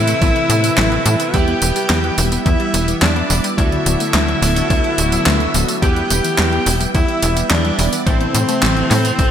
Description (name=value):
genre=synthwave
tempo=107 BPM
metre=4/4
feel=straight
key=E minor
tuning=A4 = 440 Hz
part: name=breathy alto saxophone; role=melody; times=0.0-9.3 s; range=C4 to G4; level=-20 LUFS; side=equal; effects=vintage 12-bit sampler grit, digital delay
part: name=string machine, violins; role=second line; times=0.0-9.3 s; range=C5 to G5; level=-26 LUFS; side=equal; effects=ensemble chorus, ping-pong delay
part: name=warm analog pad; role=sustained chords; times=0.0-9.3 s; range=C3 to B4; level=-24 LUFS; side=equal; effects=chorus, sidechain pumping
part: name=wide unison pluck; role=arpeggios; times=0.0-9.3 s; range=D3 to B4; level=-26 LUFS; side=left 4 dB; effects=ping-pong delay
part: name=chorused polysynth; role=stabs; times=0.0-9.3 s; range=B3 to E5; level=-25 LUFS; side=right 3 dB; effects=ping-pong delay
part: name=tight sequencer bass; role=bass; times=0.0-9.3 s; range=D1 to A2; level=-18 LUFS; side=equal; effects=sidechain pumping
part: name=pop drum kit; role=drums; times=0.1-9.3 s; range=handclaps, hi-hat, snare drum, tambourine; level=-20 LUFS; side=equal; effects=overdrive, gated reverb
part: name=electronic kick drum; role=drums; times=0.2-9.3 s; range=none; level=-16 LUFS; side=equal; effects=overdrive
room=moderate plate reverb, RT60 3.4 s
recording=bright 1980s-style digital production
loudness=-13 LUFS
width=side -9 dB against mid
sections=0.0-9.3 A section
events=none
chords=0.0 Amadd9; 1.3 Em; 3.6 D6; 5.8 Em; 8.1 Amadd9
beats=0.22 0.78 | 1.34 1.90 2.46 3.02 | 3.58 4.14 4.70 5.26 | 5.82 6.38 6.95 7.51 | 8.07 8.63 9.19